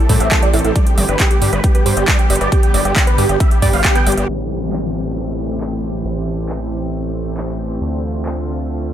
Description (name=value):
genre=uplifting trance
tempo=136 BPM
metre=4/4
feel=straight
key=A minor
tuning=A4 = 440 Hz
part: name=big supersaw lead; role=melody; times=0.0-4.3 s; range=G4 to G5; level=-21 LUFS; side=right 1 dB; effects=phaser, sidechain pumping, low-pass filter, tape echo
part: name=analog pluck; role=arpeggios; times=0.1-4.1 s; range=G3 to D5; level=-24 LUFS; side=right 2 dB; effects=chorus, phaser, sidechain pumping, tape echo
part: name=gritty driven synth bass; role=bass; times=0.1-8.9 s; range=G1 to A2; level=-21 LUFS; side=equal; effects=sidechain pumping
part: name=big-room dance drum kit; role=drums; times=0.1-8.3 s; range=handclaps, hi-hat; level=-21 LUFS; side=right 1 dB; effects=none
part: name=electronic kick drum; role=drums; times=0.1-3.9 s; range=none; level=-14 LUFS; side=equal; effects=none
part: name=downlifter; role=sound effects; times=4.3-7.8 s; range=none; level=-28 LUFS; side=left 4 dB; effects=none
room=digital ambience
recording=low-pass filter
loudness=-14 LUFS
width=side -10 dB against mid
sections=0.0-4.3 A section; 4.3-8.9 B section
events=filter sweep on synth arpeggio sound 0.0-4.3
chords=0.0 Am7; 0.8 G; 4.3 Am7; 7.8 Dm7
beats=0.32 | 0.76 1.20 1.64 2.08 | 2.52 2.96 3.40 3.84 | 4.29 4.73 5.17 5.61 | 6.05 6.49 6.93 7.37 | 7.82 8.26 8.70